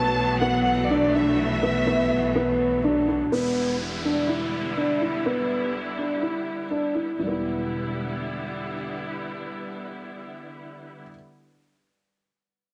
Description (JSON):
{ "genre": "piano and strings electronica", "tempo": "124 BPM", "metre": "4/4", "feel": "straight", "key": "E minor", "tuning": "A4 = 441 Hz", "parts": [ { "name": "rich chamber violin section", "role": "melody", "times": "0.0-2.8 s", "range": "D5 to A5", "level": "-28 LUFS", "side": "equal", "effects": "cassette tape, tape echo" }, { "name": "clear symphonic string section", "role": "sustained chords", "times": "0.0-11.0 s", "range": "D3 to E4", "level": "-33 LUFS", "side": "equal", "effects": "cassette tape" }, { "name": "felt-muted upright piano", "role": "riff", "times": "0.0-11.1 s", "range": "E3 to E4", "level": "-27 LUFS", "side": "equal", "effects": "cassette tape, tape echo" }, { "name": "dark symphonic double bass section", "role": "bass", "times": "0.0-8.6 s", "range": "E1 to B1", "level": "-35 LUFS", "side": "equal", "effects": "tube saturation" }, { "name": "downlifter", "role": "sound effects", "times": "3.3-7.2 s", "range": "none", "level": "-39 LUFS", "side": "equal", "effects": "none" } ], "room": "moderate spring reverb, RT60 1.1 s, small room ambience", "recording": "home recording on cassette", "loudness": "-25 LUFS", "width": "mono", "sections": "0.0-3.3 A section; 3.3-7.2 B section; 7.2-11.1 C section", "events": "drop 0.0-3.3", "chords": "0.0 B7sus4; 3.3 Em7" }